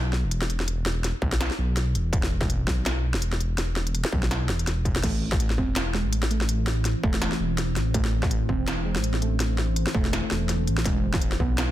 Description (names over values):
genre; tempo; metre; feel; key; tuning
half-time drum and bass; 165 BPM; 4/4; swing 56% on 16ths, half-time; A harmonic minor; A4 = 441 Hz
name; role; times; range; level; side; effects
dark detuned saw bass; bass; 0.0-11.7 s; E1 to B1; -26 LUFS; equal; none
industrial drum kit; drums; 0.1-11.7 s; crash cymbal, hi-hat, snare drum; -29 LUFS; equal; soft clipping on snare
electronic kick drum; drums; 1.2-11.5 s; none; -26 LUFS; equal; distortion
deep dark ambient pad; sustained chords; 6.1-11.7 s; E3 to C5; -33 LUFS; right 2 dB; chorus, built-in reverb, sidechain pumping
warbly dusty pluck; arpeggios; 5.0-11.7 s; G#3 to C4; -32 LUFS; right 2 dB; chorus, ping-pong delay
room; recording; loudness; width
light reverb; dense, heavily limited modern master; -23 LUFS; side -13 dB against mid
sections
0.0-11.7 A section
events
none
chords
0.0 E5; 5.0 Am; 10.9 E